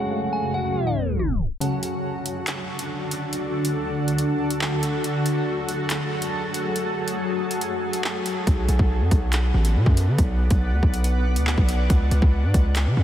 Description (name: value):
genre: hip hop, drill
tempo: 140 BPM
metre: 4/4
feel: half-time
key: unclear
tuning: A4 = 440 Hz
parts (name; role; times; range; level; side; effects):
- delicate synth tine bell; melody; 0.0-1.6 s; F#5 to A5; -33 LUFS; equal; chorus, low-pass filter, analog delay
- dark concert grand piano; accompaniment; 0.0-1.6 s; G#3 to G#4; -30 LUFS; equal; low-pass filter
- granular cloud pad; sustained chords; 0.0-13.0 s; F#2 to F#5; -25 LUFS; equal; built-in reverb, analog chorus, low-pass filter
- drill drum kit; drums; 1.6-12.9 s; handclaps, hi-hat, kick drum; -24 LUFS; equal; none
- hard-hitting 808-style bass; bass; 8.5-13.0 s; A1 to D3; -20 LUFS; equal; none
room: moderate huge ambient reverb, RT60 7.5 s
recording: dreamy mix soaked in reverb, tape stop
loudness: -20 LUFS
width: side -11 dB against mid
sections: 0.0-1.6 A section; 1.6-13.0 B section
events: filter sweep 0.0-1.6; tape stop 0.8-1.6; kick muted 1.6-8.5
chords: 0.0 F#madd9; 1.6 D; 5.0 F#madd9; 8.5 Bm; 11.9 C#